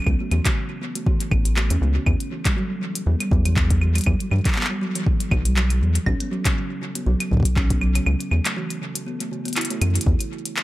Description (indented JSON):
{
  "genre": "IDM",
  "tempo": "120 BPM",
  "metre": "4/4",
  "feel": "swing 56% on 16ths",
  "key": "unclear",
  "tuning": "A4 = 440 Hz",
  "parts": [
    { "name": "glitchy drum kit", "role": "drums", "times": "0.0-10.6 s", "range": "claves, handclaps, hi-hat", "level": "-27 LUFS", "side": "equal", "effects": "small room ambience, tape echo" },
    { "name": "kalimba", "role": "arpeggios", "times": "0.1-10.0 s", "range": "C#3 to E4", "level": "-27 LUFS", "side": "right 1 dB", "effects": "tape echo" },
    { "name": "rubbery square bass", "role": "bass", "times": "0.1-10.2 s", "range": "A1 to G2", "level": "-20 LUFS", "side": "equal", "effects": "none" },
    { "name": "electronic kick drum", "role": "drums", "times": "0.1-10.2 s", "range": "none", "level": "-21 LUFS", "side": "equal", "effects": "small room ambience" }
  ],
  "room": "little or no reverb",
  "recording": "echo-heavy mix",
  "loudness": "-19 LUFS",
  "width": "side -17 dB against mid",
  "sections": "0.0-10.1 A section",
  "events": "break 8.1-10.1; drum fill 9.8",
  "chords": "0.1 Aadd9/C#; 2.1 Emadd9; 6.1 Bsus2; 8.1 Aadd9/C#; 10.1 N.C."
}